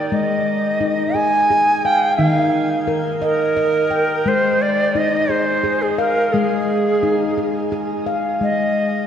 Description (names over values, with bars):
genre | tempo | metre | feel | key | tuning
world meditative, meditative tuned percussion | 58 BPM (dotted quarters) | 6/8 | straight | Ab lydian | A4 = 439 Hz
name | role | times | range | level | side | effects
bright reedy Native American-style cedar flute | melody | 0.0-9.1 s | Ab4 to Ab5 | -18 LUFS | right 2 dB | shimmer reverb, diffuse ambient delay
handpan | arpeggios | 0.0-9.1 s | Eb3 to G5 | -20 LUFS | left 2 dB | shimmer reverb, diffuse ambient delay
room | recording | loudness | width
wet concert hall reverb, RT60 2.2 s | none | -16 LUFS | side -8 dB against mid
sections
0.0-8.4 A section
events
none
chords
0.1 Ab5; 2.2 Eb; 4.3 Ab5